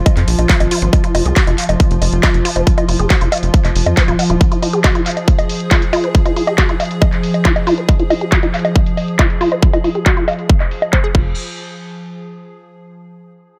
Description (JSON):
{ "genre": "psychedelic trance", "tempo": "138 BPM", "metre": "4/4", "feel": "straight", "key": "F minor", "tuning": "A4 = 440 Hz", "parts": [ { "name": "evolving wavetable pad", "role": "sustained chords", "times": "0.0-11.1 s", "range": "F3 to Ab4", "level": "-24 LUFS", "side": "equal", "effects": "chorus, built-in reverb, sidechain pumping" }, { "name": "tight sequencer bass", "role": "bass", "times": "0.0-4.4, 11.1-11.3 s", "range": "Eb1 to F2", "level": "-18 LUFS", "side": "equal", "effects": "none" }, { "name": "electronic kick drum", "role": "drums", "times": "0.1-11.2 s", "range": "none", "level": "-16 LUFS", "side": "equal", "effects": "overdrive" }, { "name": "techno drum kit", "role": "drums", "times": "0.1-11.2 s", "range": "bongos, crash cymbal, handclaps, hi-hat", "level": "-22 LUFS", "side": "equal", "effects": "low-pass filter on hats, low-pass filter on snare, low-pass filter on perc, low-pass filter on cymbals, low-pass filter on room" }, { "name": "woody wave-folded pluck", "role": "riff", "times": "0.5-11.3 s", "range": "F4 to Gb5", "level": "-22 LUFS", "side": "equal", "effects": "chorus, cassette tape, sidechain pumping, dub echo" } ], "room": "light reverb", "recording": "none", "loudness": "-14 LUFS", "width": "mono", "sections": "0.0-11.4 A section; 11.4-13.1 B section", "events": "filter sweep on drum 0.0-11.4; filter sweep on synth arpeggio sound 0.0-11.4", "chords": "0.0 F5; 11.1 N.C." }